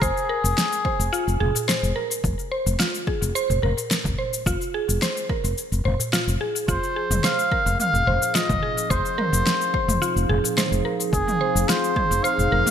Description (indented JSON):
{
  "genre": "organic downtempo",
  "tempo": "108 BPM",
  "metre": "4/4",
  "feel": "straight",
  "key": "F minor pentatonic",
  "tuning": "A4 = 443 Hz",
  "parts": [
    { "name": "trumpet with cup mute", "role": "melody", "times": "0.0-1.7, 6.7-12.7 s", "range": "Ab4 to F5", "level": "-24 LUFS", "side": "left 1 dB", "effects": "ping-pong delay" },
    { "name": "mallet-like synth pluck", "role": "arpeggios", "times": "0.0-12.7 s", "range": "F4 to C5", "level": "-27 LUFS", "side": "right 2 dB", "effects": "chorus, cassette tape, ping-pong delay" },
    { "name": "mellow fretless electric bass", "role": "bass", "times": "0.0-12.6 s", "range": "F1", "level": "-24 LUFS", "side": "equal", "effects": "sidechain pumping" },
    { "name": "deep house drum kit", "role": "drums", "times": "0.0-12.7 s", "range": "cabasa, snare drum, toms", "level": "-26 LUFS", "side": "left 1 dB", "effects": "overdrive" },
    { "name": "electronic kick drum", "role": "drums", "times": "0.0-12.1 s", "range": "none", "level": "-27 LUFS", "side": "equal", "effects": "overdrive" },
    { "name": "darbuka", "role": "percussion", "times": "0.4-12.7 s", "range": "none", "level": "-35 LUFS", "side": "right 2 dB", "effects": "none" },
    { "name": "warbly tape-like pad", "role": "sustained chords", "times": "7.0-12.7 s", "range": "F3 to F5", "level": "-29 LUFS", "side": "equal", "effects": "chorus, built-in reverb, sidechain pumping" }
  ],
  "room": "moderate plate reverb, RT60 2.0 s, digital ambience",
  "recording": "bright 1980s-style digital production",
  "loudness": "-20 LUFS",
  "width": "side -8 dB against mid",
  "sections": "0.0-12.7 A section",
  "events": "none",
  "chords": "0.0 Fm7",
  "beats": "| 0.02 0.57 1.13 1.69 | 2.24 2.80 3.35 3.91 | 4.46 5.02 5.57 6.13 | 6.68 7.24 7.80 8.35 | 8.91 9.46 10.02 10.57 | 11.13 11.69 12.24"
}